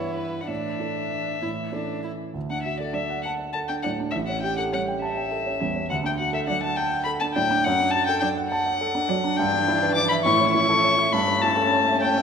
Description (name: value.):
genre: quick classical-period movement for piano quartet.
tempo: 68 BPM (dotted quarters).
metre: 6/8.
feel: rubato.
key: D major.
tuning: A4 = 442 Hz.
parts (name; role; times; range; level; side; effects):
dark violin; melody; 0.0-12.2 s; B4 to D6; -24 LUFS; left 4 dB; none.
dark cello; second line; 0.0-12.2 s; E3 to A3; -34 LUFS; right 6 dB; none.
dark violin; second line; 0.0-12.2 s; C#4 to E4; -31 LUFS; equal; none.
warm concert grand piano; accompaniment; 0.0-12.2 s; A1 to A5; -26 LUFS; right 3 dB; none.
room: moderate concert hall reverb, RT60 2.2 s.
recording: minimal, uncompressed stereo recording.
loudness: -21 LUFS.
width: side -6 dB against mid.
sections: 0.0-2.4 A section; 2.4-12.2 B section.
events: none.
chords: 0.5 Asus4; 1.4 A; 2.4 D; 4.1 A7; 5.9 D; 7.6 D/F#; 9.4 Em7/G; 10.3 A; 11.1 A7/G.